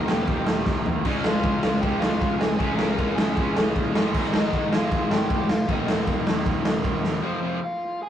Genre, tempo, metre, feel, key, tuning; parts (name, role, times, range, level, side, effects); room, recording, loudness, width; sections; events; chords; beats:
punk rock; 155 BPM; 4/4; straight; Eb mixolydian; A4 = 439 Hz
raw garage guitar; melody; 0.0-8.1 s; C4 to Bb5; -30 LUFS; left 2 dB; overdrive
distorted electric guitar; riff; 0.0-7.6 s; Eb2 to Db4; -29 LUFS; right 4 dB; distortion
sludgy distorted guitar; riff; 0.0-7.6 s; Eb2 to Db4; -30 LUFS; left 6 dB; overdrive
fuzz picked electric bass; bass; 0.0-7.2 s; Eb1 to Db2; -32 LUFS; equal; overdrive
raw garage drum kit; drums; 0.1-7.1 s; crash cymbal, kick drum, ride cymbal, snare drum, toms; -23 LUFS; equal
light reverb; rough rehearsal-room recording, warm saturation; -21 LUFS; side -10 dB against mid
0.0-7.2 A section
drum fill 0.7-1.1, 7.0
0.0 Eb; 1.1 Db; 4.0 Ab5; 5.7 Eb5; 7.2 F5
0.28 0.67 | 1.05 1.44 1.83 2.21 | 2.60 2.99 3.37 3.76 | 4.14 4.53 4.92 5.30 | 5.69 6.08 6.46 6.85 | 7.24 7.62 8.01